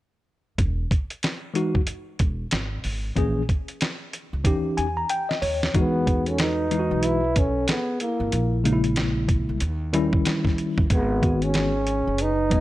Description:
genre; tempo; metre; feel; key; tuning
hip hop, jazz-hop; 93 BPM; 4/4; swing 61% on 16ths; E major; A4 = 440 Hz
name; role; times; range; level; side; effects
upright bass; bass; 0.6-12.6 s; E1 to E2; -27 LUFS; equal; none
dusty soul sampler-style drum kit; drums; 0.6-12.6 s; hi-hat, kick drum, snare drum; -24 LUFS; equal; none
tine electric piano; accompaniment; 1.5-12.6 s; C#3 to A#5; -24 LUFS; left 2 dB; medium stereo tremolo
breathy trombone; melody; 5.8-12.6 s; A#3 to E4; -25 LUFS; right 1 dB; slapback echo
vibraphone with soft mallets; second line; 5.8-12.6 s; E4 to B4; -31 LUFS; equal; none
room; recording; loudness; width
little or no reverb; none; -21 LUFS; side -16 dB against mid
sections
0.6-5.7 A section; 5.7-12.6 B section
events
drum fill 4.5-5.7; tine electric piano fill 4.5-5.7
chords
0.6 Emaj9; 3.2 A#m7b5; 4.5 D#7b9; 5.7 Emaj9; 8.3 A#m7b5; 9.6 D#7b9; 10.9 G#m7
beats
| 0.58 1.23 1.87 2.52 | 3.16 3.81 4.45 5.10 | 5.74 6.39 7.03 7.68 | 8.32 8.97 9.61 10.26 | 10.90 11.55 12.20

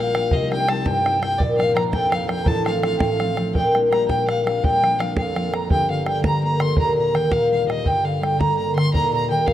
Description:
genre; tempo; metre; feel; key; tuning
celtic folk, Celtic jig; 111 BPM (dotted quarters); 6/8; straight; Bb major, G minor from 5.7 s; A4 = 443 Hz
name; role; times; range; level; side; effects
mellow hollow wooden flute; melody; 0.0-9.5 s; D5 to C6; -24 LUFS; right 1 dB; none
warm fiddle; second line; 0.0-9.5 s; D5 to C6; -28 LUFS; left 1 dB; none
concert harp; accompaniment; 0.0-9.5 s; Eb1 to Eb4; -20 LUFS; left 1 dB; none
bodhran; percussion; 0.1-9.5 s; none; -23 LUFS; right 1 dB; none
room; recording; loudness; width
light reverb, studio reverb; rough home demo mix; -18 LUFS; side -12 dB against mid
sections
0.0-5.7 A section; 5.7-9.5 B section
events
none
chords
0.3 Cm; 1.4 Bb; 2.5 F/A; 3.6 Gm/Bb; 4.6 Bb; 5.7 Gm; 6.8 Eb; 7.9 Gm; 8.9 Eb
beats
| 0.32 0.86 | 1.40 1.94 | 2.47 3.01 | 3.55 4.09 | 4.63 5.17 | 5.71 6.25 | 6.78 7.32 | 7.86 8.40 | 8.93 9.47

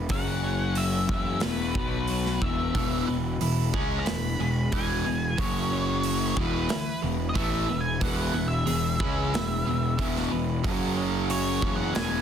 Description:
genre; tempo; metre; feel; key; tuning
quiet-loud alternative rock; 91 BPM; 4/4; straight; E major; A4 = 440 Hz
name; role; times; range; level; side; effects
twelve-string electric guitar; arpeggios; 0.0-12.2 s; E2 to B4; -35 LUFS; right 6 dB; none
thick fuzz guitar; riff; 0.0-12.2 s; E2 to C#4; -30 LUFS; left 10 dB; distortion
fuzz picked electric bass; bass; 0.0-12.2 s; E1 to C#2; -30 LUFS; equal; overdrive
octave-fuzz lead guitar; melody; 0.1-12.2 s; B4 to B5; -32 LUFS; right 1 dB; distortion, analog delay
big rock drum kit; drums; 0.1-12.1 s; hi-hat, kick drum, snare drum; -32 LUFS; right 1 dB; none
distorted electric guitar; riff; 2.7-12.2 s; E2 to C#4; -32 LUFS; right 12 dB; overdrive
room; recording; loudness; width
light reverb; dense, heavily limited modern master; -24 LUFS; side -8 dB against mid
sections
0.0-12.2 A section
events
lead electric guitar solo 0.0-12.2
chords
0.1 F#5; 1.1 E5; 1.8 B5; 2.4 E; 5.4 F#5; 6.4 E; 10.6 F#5; 11.6 E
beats
| 0.12 0.78 1.44 2.10 | 2.75 3.41 4.07 4.73 | 5.39 6.05 6.70 7.36 | 8.02 8.68 9.33 9.99 | 10.65 11.30 11.96

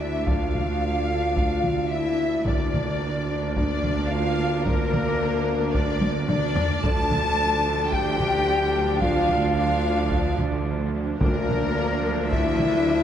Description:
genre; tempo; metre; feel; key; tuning
cinematic, epic orchestral film score; 110 BPM; 4/4; straight; D minor; A4 = 440 Hz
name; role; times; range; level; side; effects
warm symphonic violin section; melody; 0.0-13.0 s; Bb4 to A5; -32 LUFS; left 3 dB; none
mellow hollow silver concert flute; second line; 0.0-13.0 s; Bb4 to A5; -30 LUFS; equal; none
warm symphonic violin section; second line; 0.0-13.0 s; Bb4 to A5; -33 LUFS; left 3 dB; none
warm symphonic viola section; accompaniment; 0.0-13.0 s; F3 to D4; -33 LUFS; right 2 dB; none
mellow French horn section; sustained chords; 0.0-13.0 s; Bb3 to A4; -27 LUFS; left 3 dB; none
mellow woodwind section; sustained chords; 0.0-13.0 s; F3 to D5; -34 LUFS; equal; none
mellow tuba; bass; 0.0-13.0 s; D2; -32 LUFS; right 4 dB; none
rich symphonic cello section; bass; 0.0-13.0 s; D2; -31 LUFS; right 2 dB; none
warm symphonic double bass section; bass; 0.0-13.0 s; D2; -31 LUFS; right 4 dB; none
taiko ensemble; drums; 0.3-12.9 s; none; -27 LUFS; equal; none
timpani; percussion; 2.4-3.2, 11.2-12.0 s; D3; -31 LUFS; left 1 dB; none
room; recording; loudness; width
moderate concert hall reverb, RT60 2.0 s; none; -21 LUFS; side -9 dB against mid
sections
0.0-13.0 A section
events
drum fill 6.0-6.8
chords
0.0 Dm; 2.5 Bb/D; 6.8 Dm; 11.2 Bb/D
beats
| 0.27 0.82 1.36 1.91 | 2.46 3.01 3.56 4.11 | 4.65 5.20 5.74 6.29 | 6.84 7.38 7.92 8.47 | 9.02 9.56 10.11 10.66 | 11.21 11.76 12.32 12.87

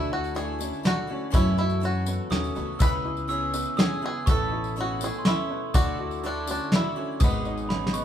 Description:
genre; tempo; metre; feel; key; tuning
indie folk with a building arrangement; 123 BPM; 3/4; straight; unclear; A4 = 440 Hz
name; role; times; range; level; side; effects
bluegrass banjo; melody; 0.0-8.0 s; B3 to B4; -31 LUFS; right 1 dB; none
glockenspiel with rubber mallets; second line; 0.0-8.0 s; A5 to E6; -34 LUFS; right 2 dB; none
clear upright piano; accompaniment; 0.0-8.0 s; F#1 to E5; -38 LUFS; left 1 dB; none
picked twelve-string acoustic guitar; accompaniment; 0.0-8.0 s; F#2 to B4; -36 LUFS; left 6 dB; none
warm brass ensemble; sustained chords; 0.0-8.0 s; B2 to F#4; -42 LUFS; left 1 dB; none
dark upright piano; arpeggios; 0.0-8.0 s; B3 to F#4; -36 LUFS; right 2 dB; none
upright bass; bass; 0.0-8.0 s; G#1 to F#2; -30 LUFS; equal; none
tambourine; percussion; 0.2-8.0 s; none; -40 LUFS; left 7 dB; none
soft brush drum kit; drums; 0.4-8.0 s; hi-hat, kick drum, snare drum; -23 LUFS; equal; none
room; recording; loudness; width
moderate studio reverb, RT60 0.7 s; band playing live in one room; -23 LUFS; side -10 dB against mid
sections
0.0-8.0 A section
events
drum fill 7.7-8.0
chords
0.0 Dadd9; 1.3 F#m7; 2.8 C#m7; 4.3 Aadd9; 5.7 Dadd9; 7.2 G#m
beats
0.36 0.85 | 1.34 1.83 2.32 | 2.81 3.30 3.79 | 4.27 4.76 5.25 | 5.74 6.23 6.72 | 7.21 7.70

